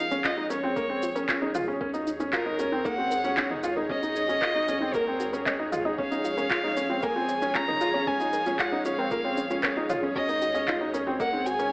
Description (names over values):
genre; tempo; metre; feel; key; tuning
piano and strings electronica; 115 BPM; 4/4; straight; Eb dorian; A4 = 440 Hz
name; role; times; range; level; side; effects
dark violin; melody; 0.0-11.7 s; Bb4 to Bb5; -32 LUFS; equal; none
granular cloud pad; sustained chords; 0.0-11.7 s; Eb4 to Gb5; -37 LUFS; equal; built-in reverb
soft round pluck; arpeggios; 0.0-11.7 s; Db4 to Eb5; -37 LUFS; equal; chorus, sidechain pumping, digital delay
warm sub bass; bass; 0.0-11.7 s; Bb1 to Eb2; -52 LUFS; equal; sidechain pumping
felt-muted upright piano; riff; 0.1-11.7 s; Bb3 to F4; -32 LUFS; equal; none
organic electronic drum kit; drums; 0.1-11.7 s; handclaps, shaker, toms; -34 LUFS; equal; none
electronic kick drum; drums; 0.2-11.3 s; none; -49 LUFS; equal; none
room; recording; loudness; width
wet recital hall reverb, RT60 1.5 s, digital ambience; AM radio sound; -27 LUFS; mono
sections
0.0-11.7 A section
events
none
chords
0.0 Bbm; 1.8 Ebm; 6.0 Bbm; 10.2 Ebm